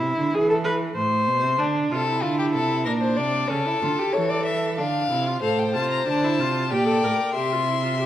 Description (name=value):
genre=classical, baroque-style fugue for string quartet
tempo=94 BPM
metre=3/4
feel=straight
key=D minor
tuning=A4 = 441 Hz
part: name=rich viola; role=accompaniment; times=0.0-8.1 s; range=C#4 to C5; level=-24 LUFS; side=equal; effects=none
part: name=rich cello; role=bass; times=0.0-8.1 s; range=A2 to E3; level=-26 LUFS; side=right 4 dB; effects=none
part: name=rich violin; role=second line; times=1.9-8.1 s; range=F4 to F5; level=-25 LUFS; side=left 3 dB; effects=none
part: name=rich violin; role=melody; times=5.4-8.1 s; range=F5 to C6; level=-26 LUFS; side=left 7 dB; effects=none
room=wet recital hall reverb, RT60 1.6 s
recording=none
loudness=-20 LUFS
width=side -12 dB against mid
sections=0.0-5.4 A section; 5.4-8.1 B section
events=none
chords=0.0 E; 1.0 Am; 1.6 Dm; 2.9 Bb; 3.5 A; 4.8 Dm; 5.4 F/A; 6.7 Gm/Bb; 7.4 C